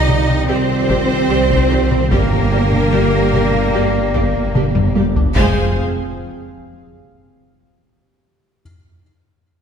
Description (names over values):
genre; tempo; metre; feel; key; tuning
cinematic, hybrid orchestral and electronic film score; 74 BPM; 4/4; straight; F dorian; A4 = 440 Hz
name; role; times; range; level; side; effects
warm symphonic violin section; second line; 0.0-5.8 s; Bb4 to Ab5; -22 LUFS; left 1 dB; none
dark French horn section; sustained chords; 0.0-5.7 s; G4 to D5; -26 LUFS; left 4 dB; none
warm analog pad; sustained chords; 0.0-5.8 s; D3 to G5; -25 LUFS; left 1 dB; chorus
rich symphonic cello section; bass; 0.0-5.8 s; Ab3 to Eb4; -20 LUFS; right 3 dB; none
rich symphonic double bass section; bass; 0.0-5.8 s; F1 to C2; -21 LUFS; right 2 dB; none
sub bass with octave; bass; 0.0-5.8 s; F1 to C2; -23 LUFS; left 1 dB; none
felt-muted upright piano; texture; 0.0-5.4 s; G4 to B4; -32 LUFS; left 2 dB; none
rich studio violin section; melody; 0.1-5.8 s; D5 to F5; -32 LUFS; left 5 dB; none
clear symphonic viola section; accompaniment; 0.1-5.8 s; G4 to C5; -26 LUFS; right 1 dB; none
taiko ensemble; drums; 0.1-6.9 s; none; -20 LUFS; equal; none
tight sequenced synth; arpeggios; 0.3-5.3 s; C3 to G4; -26 LUFS; left 1 dB; none
impact; sound effects; 5.4-8.6 s; none; -30 LUFS; left 1 dB; none
room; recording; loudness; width
wet scoring stage reverb, RT60 1.7 s; heard from further back in the room; -13 LUFS; side -7 dB against mid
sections
0.0-5.4 A section; 5.4-8.6 B section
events
drum fill 4.5-5.4; impact 5.4-8.6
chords
0.0 Cmadd9; 2.1 Gm; 5.4 Fm